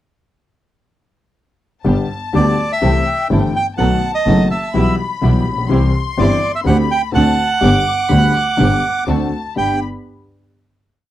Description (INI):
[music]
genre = tango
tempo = 125 BPM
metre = 4/4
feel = rubato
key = G major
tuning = A4 = 442 Hz
[part]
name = warm symphonic violin section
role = second line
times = 1.8-9.8 s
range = G5 to D6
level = -26 LUFS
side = left 6 dB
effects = none
[part]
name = warm concert grand piano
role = accompaniment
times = 1.8-9.8 s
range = F#1 to G4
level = -19 LUFS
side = left 4 dB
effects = none
[part]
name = dark chamber string section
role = stabs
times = 1.8-9.8 s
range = B3 to A4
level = -23 LUFS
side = right 1 dB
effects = none
[part]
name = clear double bass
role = bass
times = 1.9-9.8 s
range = F#1 to D2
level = -17 LUFS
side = right 1 dB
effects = none
[part]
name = bandoneon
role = melody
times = 2.4-9.8 s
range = D5 to G5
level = -17 LUFS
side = right 3 dB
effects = none
[sound]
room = little or no reverb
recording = dry, close 1970s-style studio recording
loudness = -13 LUFS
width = side -13 dB against mid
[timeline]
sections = 1.8-9.6 A section; 9.6-11.1 final chord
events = none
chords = 1.8 G; 2.8 C6; 3.8 B7; 4.7 Em/B; 5.7 C; 6.7 D7sus4; 7.1 D7; 7.6 G; 9.1 D7; 9.6 G